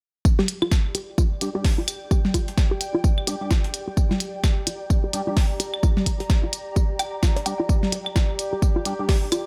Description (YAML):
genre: minimal techno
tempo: 129 BPM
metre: 4/4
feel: swing 59% on 16ths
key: G minor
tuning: A4 = 440 Hz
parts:
  - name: breakbeat sampler-style drum kit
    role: drums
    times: 0.2-9.5 s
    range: hi-hat, snare drum, tambourine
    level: -36 LUFS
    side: equal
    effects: overdrive, sidechain pumping on perc, high-pass filter on perc, studio reverb, high-pass filter on snare, sidechain pumping on hats, high-pass filter on hats, high-pass filter on room
  - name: electronic kick drum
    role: drums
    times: 0.2-9.2 s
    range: none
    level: -22 LUFS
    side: equal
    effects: studio reverb
  - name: bubbling stepped-filter texture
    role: texture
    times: 0.6-9.5 s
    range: G4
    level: -42 LUFS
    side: equal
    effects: chorus, built-in reverb, sidechain pumping
  - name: ethereal airy pad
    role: texture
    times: 1.1-9.5 s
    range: G4 to Bb5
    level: -37 LUFS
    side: equal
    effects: ensemble chorus, built-in reverb, sidechain pumping
  - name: hollow square pluck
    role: riff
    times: 0.4-9.4 s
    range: F4 to G5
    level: -30 LUFS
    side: equal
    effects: chorus, sidechain pumping, delay
  - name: electronic toms and claves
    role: percussion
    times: 0.4-9.4 s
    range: none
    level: -29 LUFS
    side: equal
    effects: studio reverb, dub echo
  - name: electronic hi-hat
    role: drums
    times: 0.5-9.4 s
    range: none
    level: -28 LUFS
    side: equal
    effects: studio reverb
  - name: percussive organ stab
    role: stabs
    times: 1.4-9.1 s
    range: G3 to G4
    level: -34 LUFS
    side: equal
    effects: ensemble chorus, cassette tape, dub echo
room: digital ambience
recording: none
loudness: -23 LUFS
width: mono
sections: 0.2-9.5 A section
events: filter sweep on synth arpeggio sound 0.2-9.5; filter sweep on synth stab 0.2-9.5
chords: 0.2 G5